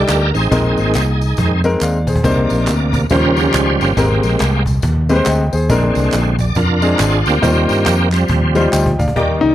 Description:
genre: uptempo gospel.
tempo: 139 BPM.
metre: 4/4.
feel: swing 61% on 8ths.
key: Eb major.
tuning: A4 = 444 Hz.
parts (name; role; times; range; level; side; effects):
clear grand piano; accompaniment; 0.0-9.5 s; Ab2 to G5; -17 LUFS; left 2 dB; plate reverb.
bright tonewheel organ; sustained chords; 0.0-9.5 s; C3 to D5; -18 LUFS; right 3 dB; slow rotary speaker, chorus vibrato, plate reverb.
fingered electric bass; bass; 0.0-9.5 s; G1 to G2; -16 LUFS; equal; none.
cajon; drums; 0.1-9.5 s; none; -22 LUFS; equal; none.
handclaps and tambourine; percussion; 0.1-9.1 s; none; -29 LUFS; equal; none.
dark French horn section; sustained chords; 9.2-9.5 s; G3 to D5; -28 LUFS; right 2 dB; none.
warm baby grand piano; melody; 9.4-9.5 s; Eb4; -11 LUFS; left 4 dB; none.
room: light reverb.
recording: dark, warm production.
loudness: -12 LUFS.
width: side -12 dB against mid.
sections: 0.0-9.2 A section.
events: tonewheel organ solo 0.0-9.2; drum fill 1.8-2.2, 8.3-9.2.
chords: 0.0 F13 (rootless); 0.5 Bb9sus4; 2.2 Cm9; 3.1 Eb13; 4.0 Abmaj9; 5.7 Bb9; 7.4 Eb69.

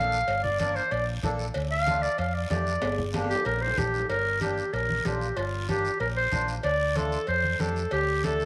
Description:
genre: latin, cumbia.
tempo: 188 BPM.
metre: 4/4.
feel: straight.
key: G minor.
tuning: A4 = 440 Hz.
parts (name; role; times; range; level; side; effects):
warm clarinet; melody; 0.0-8.5 s; F4 to F5; -29 LUFS; equal; slapback echo.
accordion; accompaniment; 0.0-8.5 s; A3 to Bb4; -39 LUFS; equal; none.
hollow-body short-scale fingered electric bass; bass; 0.0-8.4 s; G1 to F2; -34 LUFS; equal; none.
guiro; percussion; 0.1-8.5 s; none; -46 LUFS; equal; none.
cowbell and timbales; percussion; 0.3-8.4 s; none; -39 LUFS; equal; none.
congas; percussion; 0.4-8.4 s; none; -37 LUFS; equal; none.
room: moderate plate reverb, RT60 3.0 s.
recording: none.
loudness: -27 LUFS.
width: mono.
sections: 0.0-4.1 A section; 4.1-8.5 B section.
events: clarinet solo 0.0-4.1; drum fill 2.8-4.1.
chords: 0.0 Gm; 1.6 Dm; 2.8 Gm; 6.6 Dm.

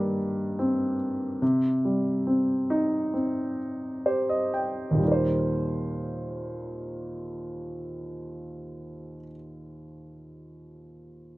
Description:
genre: pop.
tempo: 61-75 BPM.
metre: 4/4.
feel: straight.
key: Eb major.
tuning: A4 = 440 Hz.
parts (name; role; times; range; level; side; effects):
warm grand piano; accompaniment; 0.0-11.4 s; Eb2 to G5; -26 LUFS; equal; none.
room: little or no reverb.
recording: recorded outdoors, with no room sound.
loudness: -25 LUFS.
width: side -19 dB against mid.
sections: 0.0-5.0 A section; 5.0-8.9 B section.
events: slowing down 0.0-5.0; grand piano fill 3.6-5.0.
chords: 0.0 Eb6/G; 1.4 Cm.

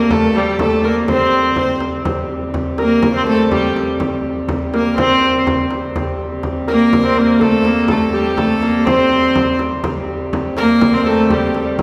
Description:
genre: medieval dance.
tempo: 123 BPM.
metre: 2/4.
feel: straight.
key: unclear.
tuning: A4 = 440 Hz.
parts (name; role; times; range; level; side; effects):
rich viola da gamba; melody; 0.0-11.7 s; G3 to C4; -18 LUFS; equal; none.
Celtic harp; second line; 0.0-11.8 s; G4 to C5; -25 LUFS; equal; none.
clear fiddle; second line; 0.0-11.6 s; G4 to C5; -26 LUFS; equal; none.
pedal harmonium; drone; 0.0-11.8 s; C3 to G3; -26 LUFS; equal; none.
frame drum; percussion; 0.1-11.8 s; none; -24 LUFS; equal; none.
room: wet church reverb, RT60 3.0 s.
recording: recorded in a church or concert hall.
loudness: -16 LUFS.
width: mono.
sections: 0.0-6.0 A section; 6.0-11.8 A section.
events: none.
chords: none.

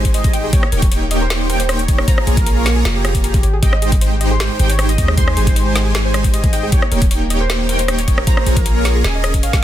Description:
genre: future bass.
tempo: 155 BPM.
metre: 4/4.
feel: half-time.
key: Ab major.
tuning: A4 = 441 Hz.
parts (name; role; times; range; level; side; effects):
warm velvety synth lead; melody; 0.0-9.6 s; G4 to F5; -25 LUFS; equal; chorus, sidechain pumping, tape echo.
wide unison pluck; arpeggios; 0.0-9.6 s; G5 to C6; -30 LUFS; right 2 dB; sidechain pumping.
dense compressed supersaw; riff; 0.0-9.6 s; Ab3 to Bb5; -21 LUFS; right 1 dB; sidechain pumping, tape echo.
warm 808-style bass; bass; 0.0-9.6 s; Eb1 to Eb2; -18 LUFS; equal; sidechain pumping.
trap drum kit; drums; 0.0-9.6 s; hi-hat, rim click, snare drum; -21 LUFS; left 1 dB; none.
soft round pluck; arpeggios; 0.1-9.5 s; F4 to Eb5; -31 LUFS; right 1 dB; none.
electronic kick drum; drums; 0.1-9.6 s; none; -15 LUFS; equal; none.
room: little or no reverb.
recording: dense, heavily limited modern master.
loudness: -13 LUFS.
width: side -12 dB against mid.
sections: 0.0-9.6 A section.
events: none.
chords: 0.0 Abmaj7; 0.5 Eb7; 2.1 Bbm7; 3.6 Abmaj7; 6.7 Eb7; 8.3 Bbm7; 9.0 Eb7sus4.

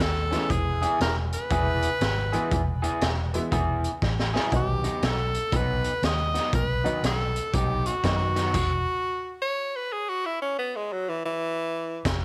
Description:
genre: electric blues shuffle.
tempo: 120 BPM.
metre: 4/4.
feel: swing 64% on 8ths.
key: E major.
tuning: A4 = 440 Hz.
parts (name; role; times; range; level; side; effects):
edgy tenor saxophone; melody; 0.0-12.0 s; E3 to D#5; -30 LUFS; equal; none.
vintage muted fingered electric bass; bass; 0.0-8.8, 12.1-12.2 s; E1 to F#2; -30 LUFS; equal; none.
raw garage drum kit; drums; 0.0-8.7, 12.1-12.2 s; crash cymbal, hi-hat, kick drum, snare drum; -31 LUFS; equal; none.
clear upright piano; accompaniment; 0.3-8.5 s; D#3 to E4; -34 LUFS; equal; none.
electric guitar through a small old amp; riff; 0.3-8.5 s; A2 to G#4; -33 LUFS; equal; spring reverb.
room: light reverb, small room ambience.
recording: none.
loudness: -26 LUFS.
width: mono.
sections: 0.0-12.2 A section.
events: drum fill 4.0-4.5; stop 8.5-12.1.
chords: 0.0 A; 0.5 E; 4.5 B; 8.5 Esus2.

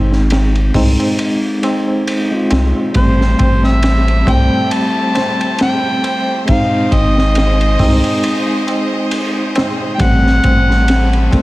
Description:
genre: trip hop.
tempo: 68 BPM.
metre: 4/4.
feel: swing 56% on 16ths.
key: unclear.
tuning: A4 = 440 Hz.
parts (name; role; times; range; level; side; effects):
mellow tine electric piano; accompaniment; 0.0-11.4 s; G3 to F4; -17 LUFS; equal; tremolo, vintage 12-bit sampler grit, tape echo.
round analog bass; bass; 0.0-11.4 s; G#1 to B#1; -13 LUFS; equal; tube saturation.
crunchy breakbeat drum kit; drums; 0.1-11.4 s; hi-hat, kick drum, ride cymbal, snare drum; -18 LUFS; equal; vintage 12-bit sampler grit.
tabla; percussion; 0.1-11.4 s; none; -27 LUFS; right 2 dB; none.
clear studio violin section; sustained chords; 2.9-11.4 s; G#3 to D#5; -24 LUFS; equal; none.
overdriven harmonica; melody; 3.0-11.3 s; C5 to A5; -19 LUFS; equal; tape echo.
room: light reverb, studio reverb.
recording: vinyl crackle.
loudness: -11 LUFS.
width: side -18 dB against mid.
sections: 0.0-11.4 A section.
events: none.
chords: 0.0 G#; 2.9 Am7; 6.5 G#; 10.0 Am7.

